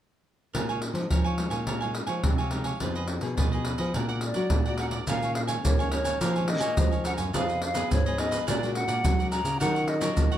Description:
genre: samba and choro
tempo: 106 BPM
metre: 4/4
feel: straight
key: Bb minor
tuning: A4 = 440 Hz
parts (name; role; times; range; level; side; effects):
- cavaquinho; accompaniment; 0.5-10.4 s; Eb4 to Ab5; -34 LUFS; right 6 dB; none
- nylon-string guitar; accompaniment; 0.5-10.4 s; F2 to Ab4; -36 LUFS; left 5 dB; none
- nylon-string guitar; bass; 0.5-10.4 s; F2 to Bb3; -31 LUFS; left 1 dB; none
- surdo, pandeiro and maracas; percussion; 0.5-10.4 s; none; -28 LUFS; right 1 dB; none
- mellow hollow silver concert flute; melody; 4.2-10.4 s; C5 to Bb5; -30 LUFS; equal; slapback echo
room: little or no reverb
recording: close, detailed microphones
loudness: -24 LUFS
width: side -11 dB against mid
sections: 0.5-5.1 A section; 5.1-10.4 B section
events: none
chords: 0.5 Bbm11; 2.8 Fm7b5; 3.9 Bbaug7; 5.1 Bbm7; 7.3 Fm7b5; 8.5 Bb7b13; 9.6 Ebm9

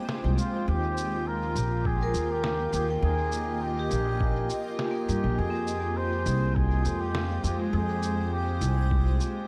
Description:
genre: ambient dub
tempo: 102 BPM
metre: 4/4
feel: straight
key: F minor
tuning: A4 = 440 Hz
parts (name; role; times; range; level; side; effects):
- trumpet with cup mute; melody; 0.0-9.5 s; F4 to C5; -35 LUFS; equal; dub echo
- granular cloud pad; sustained chords; 0.0-9.5 s; Ab3 to G5; -36 LUFS; equal; built-in reverb
- vibraphone with hard mallets; arpeggios; 0.0-9.5 s; Bb3 to G5; -37 LUFS; equal; dub echo
- electronic snare drum and cabasa; drums; 0.1-9.3 s; none; -40 LUFS; equal; small room ambience, dub echo
- upright bass; bass; 0.2-9.2 s; Bb1 to G2; -30 LUFS; equal; none
- electronic kick drum; drums; 1.9-9.0 s; none; -31 LUFS; equal; small room ambience
room: moderate huge ambient reverb, RT60 7.2 s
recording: none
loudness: -28 LUFS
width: mono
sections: 0.0-9.5 A section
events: none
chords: 0.0 Fmadd9; 0.7 Ebadd9; 5.4 Fmadd9

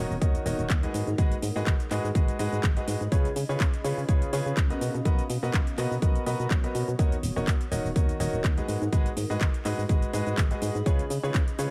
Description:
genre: piano house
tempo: 124 BPM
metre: 4/4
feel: swing 55% on 16ths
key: unclear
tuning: A4 = 439 Hz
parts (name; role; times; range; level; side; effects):
- clear grand piano; riff; 0.0-11.7 s; Db3 to Eb5; -34 LUFS; equal; sidechain pumping, dub echo
- solid FM bass; bass; 0.0-11.7 s; Eb1 to Db3; -33 LUFS; equal; sidechain pumping
- granular cloud pad; texture; 0.0-11.7 s; B3 to Cb6; -41 LUFS; equal; none
- house drum kit; drums; 0.1-11.7 s; cabasa, handclaps, hi-hat; -38 LUFS; equal; none
- electronic kick drum; drums; 0.2-11.4 s; none; -27 LUFS; equal; none
room: digital ambience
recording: none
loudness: -27 LUFS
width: mono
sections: 0.0-11.7 A section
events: none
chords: 0.0 Ebm7; 0.9 Abm7; 3.1 Db7; 4.8 Bmaj7; 7.0 Ebm7; 8.7 Abm7; 10.9 Db7

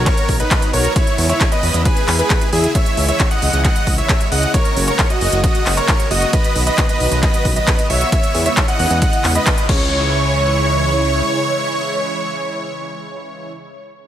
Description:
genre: uplifting trance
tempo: 134 BPM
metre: 4/4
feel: straight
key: C# dorian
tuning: A4 = 440 Hz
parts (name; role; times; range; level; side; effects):
- big supersaw lead; melody; 0.0-13.5 s; D#4 to F#5; -20 LUFS; right 1 dB; sidechain pumping, tape echo
- bright grand piano; second line; 0.0-13.5 s; G#4 to F#5; -25 LUFS; equal; sidechain pumping, tape echo
- supersaw pad; sustained chords; 0.0-13.5 s; C#3 to F#4; -25 LUFS; right 1 dB; phaser, sidechain pumping
- fat analog bass; bass; 0.0-11.2 s; F#1 to E2; -19 LUFS; equal; sidechain pumping
- electronic kick drum; drums; 0.1-9.8 s; none; -17 LUFS; equal; none
- techno drum kit; drums; 0.1-9.8 s; crash cymbal, handclaps, hi-hat, ride cymbal; -21 LUFS; equal; none
room: digital ambience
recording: none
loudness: -14 LUFS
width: side -11 dB against mid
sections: 0.0-9.9 A section; 9.9-13.5 B section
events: drop 0.0-9.9; band accent 9.5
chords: 0.0 B; 1.0 E6; 2.8 C#m; 4.5 F#add9; 6.3 B; 8.1 E6; 9.7 C#m

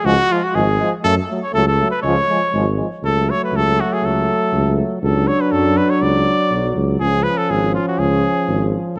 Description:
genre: balkan folk, Balkan brass band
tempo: 121 BPM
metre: 2/4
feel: straight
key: unclear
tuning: A4 = 440 Hz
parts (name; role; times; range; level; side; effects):
- warm cornet; melody; 0.0-8.7 s; E#4 to D5; -21 LUFS; equal; none
- warm euphonium; accompaniment; 0.0-8.9 s; G#3 to D4; -25 LUFS; equal; none
- warm trombone; accompaniment; 0.0-9.0 s; E#3 to F#3; -26 LUFS; equal; none
- mellow tuba; bass; 0.0-9.0 s; G#1 to F#2; -22 LUFS; equal; none
room: moderate concert hall reverb, RT60 2.0 s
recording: none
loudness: -17 LUFS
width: mono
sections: 0.0-3.0 A section; 3.0-9.0 B section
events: none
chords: 0.0 C#; 1.1 F#m; 2.0 C#; 3.0 F#m/C#; 5.0 Bm/C# (rootless); 7.0 C#

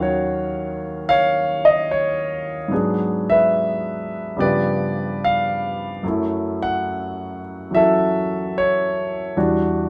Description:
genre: jazz ballad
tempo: 72 BPM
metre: 4/4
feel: swing 68% on 8ths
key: unclear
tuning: A4 = 440 Hz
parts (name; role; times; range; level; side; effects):
- warm concert grand piano; solo; 0.0-9.9 s; Eb2 to Gb5; -21 LUFS; equal; none
room: moderate large studio reverb, RT60 1.0 s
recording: band playing live in one room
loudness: -21 LUFS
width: mono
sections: 0.0-9.9 A section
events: none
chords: 0.0 Ebm9; 2.7 Abm7b5; 4.4 G7#11; 6.0 Gbm7; 9.4 Em7

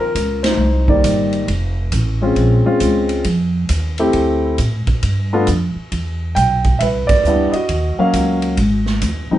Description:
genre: jazz piano trio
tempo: 135 BPM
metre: 4/4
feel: swing 65% on 8ths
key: unclear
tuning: A4 = 440 Hz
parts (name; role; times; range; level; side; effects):
- dark concert grand piano; melody; 0.0-9.4 s; Eb3 to G5; -16 LUFS; equal; none
- upright bass; bass; 0.2-9.3 s; F1 to A2; -18 LUFS; equal; none
- swinging big-band drum kit; drums; 0.2-9.2 s; hi-hat, kick drum, ride cymbal, snare drum; -23 LUFS; right 1 dB; none
room: moderate studio ambience, RT60 0.5 s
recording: heard from further back in the room, nothing above 10.3 kHz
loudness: -14 LUFS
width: side -13 dB against mid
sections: 0.0-9.4 A section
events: band accent 0.4, 7.0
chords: 0.0 Ab6 (rootless); 0.6 Cm7; 1.5 F7; 2.4 Bbm7; 4.1 D5; 5.0 G7(no3); 5.9 Cmaj7; 7.7 Ebm7; 8.6 Ab7(no3)

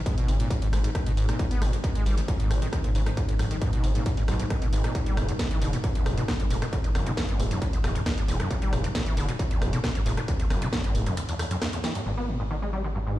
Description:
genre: driving peak-time techno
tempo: 135 BPM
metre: 4/4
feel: straight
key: G# minor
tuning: A4 = 440 Hz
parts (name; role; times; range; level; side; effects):
- deep dark ambient pad; drone; 0.0-12.1 s; G#2 to D#3; -37 LUFS; right 1 dB; chorus, built-in reverb, sidechain pumping
- overdriven acid bass; riff; 0.1-13.2 s; D2 to B3; -31 LUFS; equal; distortion, analog chorus, sidechain pumping, tape echo
- electronic kick drum; drums; 0.1-10.8 s; none; -27 LUFS; equal; distortion
- techno drum kit; drums; 0.1-12.0 s; hi-hat, rim click, snare drum; -35 LUFS; equal; none
- gritty driven synth bass; bass; 0.3-13.2 s; E1 to B1; -28 LUFS; equal; sidechain pumping
room: digital ambience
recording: played on a big sound system in a bare room, stone room reverb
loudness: -24 LUFS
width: side -15 dB against mid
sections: 0.0-12.1 A section; 12.1-13.2 B section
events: break 11.2-12.1; drum fill 11.8; band accent 11.8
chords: 0.0 G#m; 5.0 N.C.

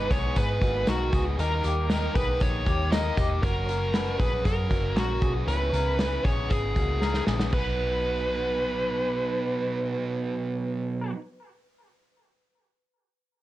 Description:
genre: jangly indie pop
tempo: 117 BPM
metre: 4/4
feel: straight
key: B major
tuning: A4 = 440 Hz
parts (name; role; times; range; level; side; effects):
- dark smooth lead guitar; melody; 0.0-11.1 s; F#4 to D#5; -29 LUFS; right 1 dB; overdrive
- biting overdriven guitar; accompaniment; 0.0-11.2 s; F#2 to B4; -33 LUFS; right 4 dB; none
- clear studio string section; sustained chords; 0.0-3.4 s; A#4 to D#6; -43 LUFS; left 2 dB; none
- electric guitar through a small old amp; arpeggios; 0.0-9.0 s; A#3 to C#5; -33 LUFS; left 5 dB; none
- vintage muted picked electric bass; bass; 0.0-11.1 s; E1 to G#2; -29 LUFS; equal; none
- loose indie drum kit; drums; 0.1-7.6 s; crash cymbal, hi-hat, kick drum, snare drum; -28 LUFS; equal; vintage 12-bit sampler grit
- tambourine; percussion; 0.1-3.3 s; none; -50 LUFS; left 5 dB; none
room: moderate club reverb, RT60 0.5 s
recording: cassette tape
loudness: -24 LUFS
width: side -15 dB against mid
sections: 0.0-7.5 A section; 7.5-11.6 B section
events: drum fill 7.0-7.5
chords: 0.0 G#m; 1.4 D#; 3.4 F#; 5.5 C#m; 7.5 B

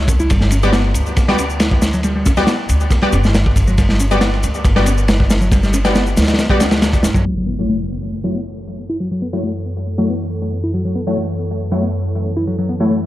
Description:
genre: breakbeat, breaks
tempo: 138 BPM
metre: 4/4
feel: straight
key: F# phrygian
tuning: A4 = 439 Hz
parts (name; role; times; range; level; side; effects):
- upright bass; bass; 0.0-7.2 s; G1 to G2; -17 LUFS; equal; none
- crunchy breakbeat drum kit; drums; 0.1-7.2 s; kick drum, ride cymbal, snare drum; -16 LUFS; equal; analog delay
- shaker; drums; 0.1-13.1 s; none; -30 LUFS; left 3 dB; none
- picked electric bass; riff; 0.2-13.0 s; F#3 to E4; -22 LUFS; equal; low-pass filter, analog delay
- orchestra-hit-like synth stab; stabs; 0.6-12.9 s; A3 to D5; -22 LUFS; left 2 dB; built-in reverb, analog delay
- lush unison pad; sustained chords; 7.3-13.1 s; F#2 to A4; -23 LUFS; equal; chorus, sidechain pumping
- impact; sound effects; 7.3-9.0 s; none; -27 LUFS; equal; none
room: light reverb, studio ambience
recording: echo-heavy mix, vinyl crackle, low-pass filter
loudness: -14 LUFS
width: side -15 dB against mid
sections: 0.0-7.3 A section; 7.3-13.1 B section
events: impact 7.3-9.0; filter sweep on picked electric bass 7.3-13.1; filter sweep on synth stab 7.3-13.1; filter sweep on analog synth pad 7.3-13.1; filter sweep 7.3-13.1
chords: 0.3 Gmaj7; 7.3 F#m7

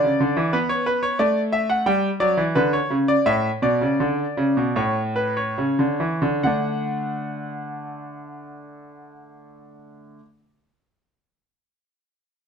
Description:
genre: classical, baroque-style two-part invention for grand piano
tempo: 69-94 BPM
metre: 4/4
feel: straight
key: D major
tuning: A4 = 439 Hz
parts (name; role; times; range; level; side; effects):
- bright concert grand piano; solo; 0.0-10.2 s; A2 to G5; -20 LUFS; equal; none
room: light reverb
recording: minimal, uncompressed stereo recording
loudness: -19 LUFS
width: side -6 dB against mid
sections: 0.0-6.4 A section; 6.4-9.9 B section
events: slowing down 0.0-6.4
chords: 0.0 N.C.; 0.5 Bm; 1.9 G; 3.3 A; 6.4 D

